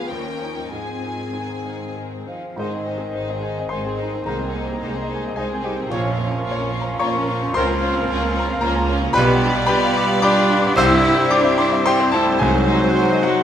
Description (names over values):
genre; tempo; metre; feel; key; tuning
classical, romantic movement for piano and orchestra; 95-114 BPM; 3/4; rubato; Ab major, C major from 9.2 s; A4 = 440 Hz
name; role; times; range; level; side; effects
clear baby grand piano; melody; 0.0-13.4 s; Bb1 to E6; -22 LUFS; left 1 dB; none
rich studio violin section; melody; 0.0-13.4 s; Ab4 to Ab5; -31 LUFS; left 3 dB; none
clear chamber violin section; second line; 0.0-13.4 s; G3 to B4; -29 LUFS; left 5 dB; none
rich symphonic viola section; accompaniment; 0.0-13.4 s; Eb3 to Db4; -29 LUFS; right 2 dB; none
dark French horn section; sustained chords; 0.0-13.4 s; Eb3 to Bb4; -27 LUFS; left 3 dB; none
rich symphonic cello section; bass; 0.0-13.4 s; D2 to E4; -27 LUFS; right 2 dB; none
mellow concert flute; second line; 2.3-13.4 s; Eb5 to E6; -28 LUFS; left 2 dB; none
mellow cor anglais; second line; 2.6-13.4 s; Bb4 to Db5; -30 LUFS; right 1 dB; none
warm clarinet; second line; 2.6-13.4 s; Eb4 to Ab4; -29 LUFS; left 1 dB; none
mellow bassoon; accompaniment; 2.6-13.4 s; Eb3 to G3; -28 LUFS; right 2 dB; none
mellow trumpet; stabs; 2.6-13.4 s; Bb4 to Db5; -26 LUFS; right 2 dB; none
warm symphonic double bass section; bass; 2.6-12.9 s; Ab1 to Db2; -27 LUFS; right 2 dB; none
timpani; percussion; 4.3-5.1, 12.4-13.2 s; C3; -29 LUFS; equal; none
room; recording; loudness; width
moderate scoring stage reverb, RT60 1.8 s; close, detailed microphones; -17 LUFS; side -9 dB against mid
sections
0.0-2.6 A section; 2.6-13.4 B section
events
none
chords
0.1 Eb7; 0.7 Ab; 4.3 Ab/C; 5.9 Bbm; 7.6 Bbm/Db; 9.2 G7/B; 10.8 C; 12.4 Cdim7